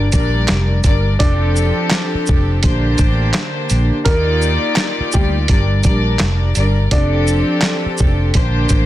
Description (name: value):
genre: hip hop, boom-bap hip-hop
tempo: 84 BPM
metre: 4/4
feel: swing 62% on 16ths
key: F mixolydian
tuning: A4 = 440 Hz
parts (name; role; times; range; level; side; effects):
- warm symphonic string section; accompaniment; 0.0-8.9 s; G2 to D5; -19 LUFS; left 1 dB; high-pass filter, low-pass filter
- vintage muted fingered electric bass; bass; 0.0-8.9 s; F1 to Eb2; -16 LUFS; equal; none
- boom bap sampler-style drum kit; drums; 0.1-8.9 s; handclaps, hi-hat, kick drum, shaker, snare drum; -16 LUFS; equal; none
- warm upright piano; melody; 1.2-7.8 s; G3 to D5; -23 LUFS; equal; high-pass filter, low-pass filter, tape echo
room: digital ambience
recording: dense, heavily limited modern master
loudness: -13 LUFS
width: side -14 dB against mid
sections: 0.0-8.9 A section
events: none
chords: 0.0 Gm; 1.2 F6; 2.6 Bb6; 4.1 Ebmaj7; 5.5 Gm; 6.9 F6; 8.3 Bb6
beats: 0.49 | 1.20 1.92 2.63 3.35 | 4.06 4.77 5.49 6.20 | 6.92 7.63 8.35